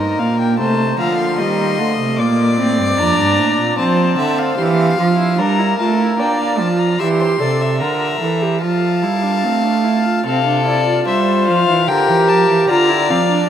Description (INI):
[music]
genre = classical, baroque-style fugue for string quartet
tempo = 74 BPM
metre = 4/4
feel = straight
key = F major from 10.3 s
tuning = A4 = 441 Hz
[part]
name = rich violin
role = melody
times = 0.0-13.5 s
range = D5 to D6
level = -21 LUFS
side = left 7 dB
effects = none
[part]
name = warm violin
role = second line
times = 0.0-13.5 s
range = A4 to F5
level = -19 LUFS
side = left 3 dB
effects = none
[part]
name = warm viola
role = accompaniment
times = 0.0-13.5 s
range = F3 to Bb4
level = -18 LUFS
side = right 1 dB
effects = none
[part]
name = rich cello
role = bass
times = 0.0-13.5 s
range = F2 to Bb3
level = -18 LUFS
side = right 5 dB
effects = none
[sound]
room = wet cathedral reverb, RT60 6.8 s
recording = in a vast, echoing space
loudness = -13 LUFS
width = side -9 dB against mid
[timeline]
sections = 0.0-10.3 A section; 10.3-13.5 B section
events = none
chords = 0.0 Cm7/G (rootless); 0.6 F7/C; 2.2 Bb; 3.8 F; 5.4 Gm7; 7.0 C7; 8.6 F; 10.3 F/C; 11.9 Gm7/D